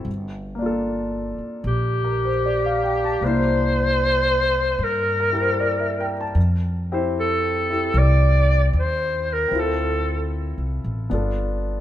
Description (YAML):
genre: jazz ballad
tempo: 76 BPM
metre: 4/4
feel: swing 67% on 8ths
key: G dorian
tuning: A4 = 440 Hz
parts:
  - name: clear grand piano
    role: accompaniment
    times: 0.0-11.8 s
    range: Bb3 to A5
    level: -26 LUFS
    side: left 2 dB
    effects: none
  - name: upright bass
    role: bass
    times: 0.0-11.8 s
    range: G1 to G2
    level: -23 LUFS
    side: equal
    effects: none
  - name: bright clarinet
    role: melody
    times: 1.7-10.3 s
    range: G4 to D5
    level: -21 LUFS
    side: equal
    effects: none
room: light reverb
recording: minimal, uncompressed stereo recording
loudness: -19 LUFS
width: side -12 dB against mid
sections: 0.1-11.8 A section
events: none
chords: 0.1 Gm9; 3.2 C9; 6.4 Fmaj9; 9.5 Dm9; 11.1 G9